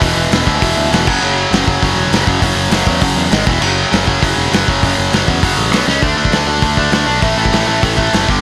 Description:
punk rock; 200 BPM; 4/4; straight; A4 = 440 Hz
distorted electric guitar; riff; 0.0-8.4 s; E2 to D4; -16 LUFS; equal; overdrive
modern bright picked electric bass; bass; 0.0-8.4 s; E1 to E2; -21 LUFS; equal
loose indie drum kit; drums; 0.0-8.4 s; crash cymbal, hi-hat, kick drum, snare drum; -19 LUFS; equal
little or no reverb; -13 LUFS; mono
0.0-6.0 A section; 6.0-8.4 B section
drum fill 5.9
0.0 E5; 1.1 F#5; 3.3 G#5; 3.5 E5; 3.6 F#5; 5.7 B5; 5.9 C#5; 6.0 D5; 7.2 A5
| 0.02 0.32 0.62 0.92 | 1.22 1.52 1.82 2.12 | 2.42 2.72 3.02 3.32 | 3.62 3.92 4.22 4.52 | 4.82 5.12 5.43 5.73 | 6.03 6.33 6.63 6.93 | 7.23 7.53 7.83 8.13

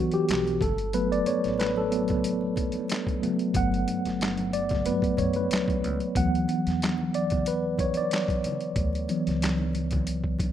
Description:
R&B, neo-soul; 92 BPM; 4/4; swing 54% on 16ths; D major; A4 = 440 Hz
mellow tine electric piano; accompaniment; 0.0-10.5 s; E3 to F#5; -26 LUFS; equal; medium stereo tremolo
boom bap sampler-style drum kit; drums; 0.1-10.5 s; handclaps, hi-hat, kick drum, snare drum; -30 LUFS; equal
congas; percussion; 0.1-10.5 s; -38 LUFS; right 1 dB
upright bass; bass; 0.3-10.5 s; G1 to G2; -32 LUFS; equal
light reverb; rough home demo mix; -24 LUFS; side -10 dB against mid
0.0-10.5 A section
tine electric piano solo 0.0-10.5
0.0 D69; 0.6 Gmaj9; 6.2 D69
0.28 | 0.93 1.59 2.24 2.89 | 3.54 4.20 4.85 5.50 | 6.15 6.80 7.46 8.11 | 8.76 9.41 10.06

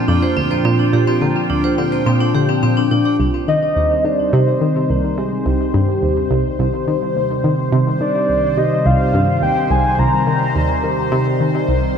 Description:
ambient, sequencer-driven space music; 106 BPM; 4/4; straight; C minor; A4 = 438 Hz
phased analog pad; sustained chords; 0.0-12.0 s; Bb2 to C5; -19 LUFS; equal; phaser, chorus
vibraphone with hard mallets; arpeggios; 0.0-3.1 s; Bb3 to C5; -19 LUFS; moving between left 7 dB and right 2 dB; auto-pan, ping-pong delay
bubbling stepped-filter texture; texture; 0.0-12.0 s; C5 to G5; -32 LUFS; right 1 dB; chorus, built-in reverb
analog pluck; riff; 0.1-11.8 s; C2 to Eb3; -18 LUFS; equal; chorus, ping-pong delay
soft octave-layered synth lead; melody; 3.5-11.1 s; G4 to Bb5; -19 LUFS; equal; chorus, ping-pong delay
moderate plate reverb, RT60 3.0 s; -14 LUFS; side -7 dB against mid
0.0-3.2 A section; 3.2-12.0 B section
fade-in on synth texture 3.2-12.0
0.0 Bb; 3.2 Cm
0.37 | 0.93 1.50 2.07 2.63 | 3.20 3.76 4.33 4.90 | 5.46 6.03 6.59 7.16 | 7.73 8.29 8.86 9.42 | 9.99 10.56 11.12 11.69

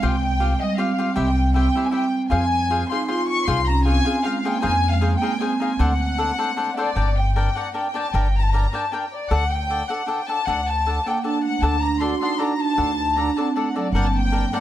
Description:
mexican folk, mariachi; 155 BPM; 3/4; straight; F minor, G harmonic minor from 7.0 s; A4 = 439 Hz
warm symphonic violin section; melody; 0.0-14.6 s; D5 to Db6; -24 LUFS; left 2 dB; plate reverb, analog delay
marimba with medium hard mallets; second line; 0.0-6.8, 11.1-14.6 s; F#3 to F#4; -24 LUFS; right 4 dB; plate reverb
cavaquinho; accompaniment; 0.0-14.6 s; D4 to G5; -27 LUFS; left 3 dB; plate reverb
upright bass; bass; 0.0-14.4 s; G1 to F2; -21 LUFS; equal
moderate studio reverb, RT60 0.6 s; dark, warm production; -19 LUFS; side -12 dB against mid
0.0-7.0 A section; 7.0-14.6 B section
0.0 Csus4; 1.2 C; 2.3 Fm; 4.6 Fm7; 5.8 D7; 7.0 Gm; 9.3 D; 13.9 Gm
| 0.03 0.41 0.79 | 1.17 1.55 1.93 | 2.32 2.71 3.09 | 3.48 3.86 4.25 | 4.63 5.02 5.40 | 5.79 6.18 6.57 | 6.96 7.35 7.74 | 8.13 8.52 8.91 | 9.30 9.69 10.08 | 10.46 10.85 11.24 | 11.63 12.02 12.40 | 12.79 13.17 13.55 | 13.93 14.31

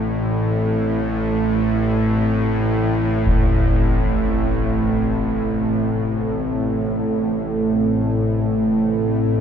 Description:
dark ambient drone; free time; A minor; A4 = 440 Hz
dark analog pad; sustained chords; 0.0-9.4 s; A3 to A4; -22 LUFS; right 2 dB; chorus
bowed-like drone; drone; 0.0-9.4 s; A1 to A2; -20 LUFS; equal; built-in reverb
bronze singing bowl; texture; 0.0-9.4 s; A4; -39 LUFS; right 5 dB
concert bass drum; percussion; 3.3-3.4 s; -22 LUFS; left 1 dB; low-pass filter on kick
wet huge ambient reverb, RT60 7.5 s; dark, warm production, nothing above 8.0 kHz; -17 LUFS; side -8 dB against mid
0.0-9.4 A section
0.0 Am
free time

